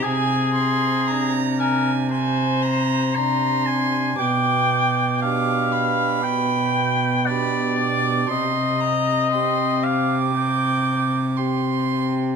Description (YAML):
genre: classical, baroque-style sonata movement with continuo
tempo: 58 BPM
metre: 4/4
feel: straight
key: C minor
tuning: A4 = 440 Hz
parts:
  - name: clear oboe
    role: melody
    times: 0.0-11.3 s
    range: Ab4 to Bb5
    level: -23 LUFS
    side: left 5 dB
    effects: none
  - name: warm violin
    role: second line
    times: 0.0-12.4 s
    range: Ab5 to D6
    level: -25 LUFS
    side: right 9 dB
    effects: none
  - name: chamber organ, flutes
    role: accompaniment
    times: 0.0-12.4 s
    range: B2 to G4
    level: -26 LUFS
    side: equal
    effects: none
  - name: warm cello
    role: bass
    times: 0.1-12.3 s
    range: B2 to C3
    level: -24 LUFS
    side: right 2 dB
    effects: none
room: moderate recital hall reverb, RT60 1.6 s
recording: close, detailed microphones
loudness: -18 LUFS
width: side -6 dB against mid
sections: 0.0-12.4 A section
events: none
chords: 0.0 Bb9/C; 4.2 G/B; 8.3 Cm